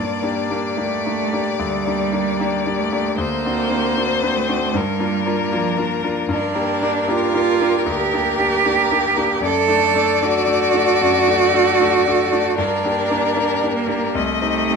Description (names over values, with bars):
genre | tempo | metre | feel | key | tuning
classical, slow romantic movement for piano trio | 76 BPM | 4/4 | rubato | G minor from 6.3 s | A4 = 440 Hz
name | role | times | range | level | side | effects
rich violin | melody | 0.0-14.8 s | Bb4 to Eb5 | -22 LUFS | left 8 dB | none
rich cello | second line | 0.0-14.8 s | F3 to A4 | -19 LUFS | right 7 dB | none
bright concert grand piano | accompaniment | 0.0-14.8 s | C2 to A4 | -22 LUFS | left 3 dB | none
room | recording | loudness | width
moderate recital hall reverb, RT60 1.5 s | close, detailed microphones | -16 LUFS | side -5 dB against mid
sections
0.0-14.8 A section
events
none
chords
0.0 Gm; 3.2 D7; 4.8 Gm7; 6.3 Gm; 9.4 D/F#; 12.6 Gm; 14.2 Cm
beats
0.78 1.59 2.40 | 3.19 3.97 4.75 5.54 | 6.32 7.10 7.88 8.66 | 9.43 10.21 11.01 11.80 | 12.58 13.37 14.16